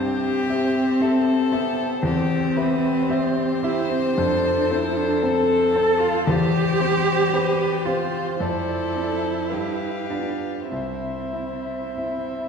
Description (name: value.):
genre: classical, slow romantic movement for piano quintet.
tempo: 47-58 BPM.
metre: 4/4.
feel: rubato.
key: C major.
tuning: A4 = 441 Hz.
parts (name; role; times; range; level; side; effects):
warm violin; melody; 0.0-12.5 s; E4 to C5; -28 LUFS; left 5 dB; none.
dark cello; second line; 0.0-12.5 s; B3 to A4; -23 LUFS; right 2 dB; none.
warm violin; second line; 0.0-12.5 s; C5 to F5; -32 LUFS; left 1 dB; none.
dark viola; accompaniment; 0.0-12.5 s; G4 to C5; -29 LUFS; equal; none.
warm concert grand piano; accompaniment; 0.0-12.5 s; C2 to E5; -26 LUFS; left 3 dB; none.
room: wet scoring stage reverb, RT60 1.6 s.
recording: heard from further back in the room.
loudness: -20 LUFS.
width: side -6 dB against mid.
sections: 0.0-12.5 A section.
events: none.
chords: 0.0 C; 2.0 C/E; 4.2 F; 6.3 C/E; 8.4 Dm7/F; 9.5 G7; 10.7 C.